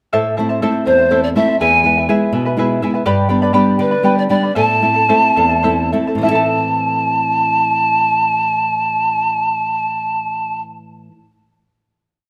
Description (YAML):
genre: andean folk, Andean ensemble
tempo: 66-82 BPM (dotted quarters)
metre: 6/8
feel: straight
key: A minor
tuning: A4 = 440 Hz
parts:
  - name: charango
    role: accompaniment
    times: 0.1-11.3 s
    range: E4 to B5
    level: -21 LUFS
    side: equal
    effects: none
  - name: nylon-string guitar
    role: accompaniment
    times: 0.1-11.2 s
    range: E2 to E5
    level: -21 LUFS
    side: equal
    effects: none
  - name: breathy polished pan flute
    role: melody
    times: 0.9-10.6 s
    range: B4 to A5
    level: -17 LUFS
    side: equal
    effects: none
room: moderate recital hall reverb, RT60 1.4 s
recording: close, detailed microphones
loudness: -15 LUFS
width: mono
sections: 0.1-6.2 A section; 6.2-9.8 final chord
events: slowing down 3.1-6.2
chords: 0.1 Am; 1.6 E; 3.1 G; 4.6 Am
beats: | 0.14 0.87 | 1.60 2.33 | 3.06 3.79 | 4.55 5.36 | 6.22 7.13 | 8.03 8.94